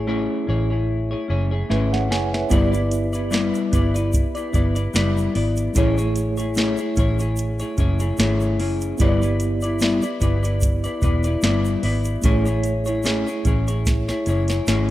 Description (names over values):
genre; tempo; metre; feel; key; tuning
indie pop, bedroom pop; 74 BPM; 4/4; swing 55% on 16ths; A major; A4 = 440 Hz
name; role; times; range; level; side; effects
mellow tine electric piano; accompaniment; 0.0-14.9 s; A3 to G#5; -27 LUFS; right 4 dB; medium stereo tremolo
semi-hollow electric guitar; accompaniment; 0.0-14.9 s; G3 to D5; -24 LUFS; left 4 dB; wide subtle chorus, warbly pitch drift
vintage muted fingered electric bass; bass; 0.0-14.9 s; E1 to A1; -22 LUFS; equal; none
soft vintage rhythm box; drums; 1.7-14.9 s; hi-hat, kick drum, snare drum; -23 LUFS; equal; none
tube shaker; percussion; 2.5-14.9 s; none; -39 LUFS; right 3 dB; none
room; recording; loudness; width
little or no reverb; rough home demo mix; -18 LUFS; side -14 dB against mid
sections
0.0-14.9 A section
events
drum fill 1.7-2.5, 13.9-14.9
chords
0.0 Amaj7; 2.5 G6; 5.8 Amaj7; 9.0 G6; 12.2 Amaj7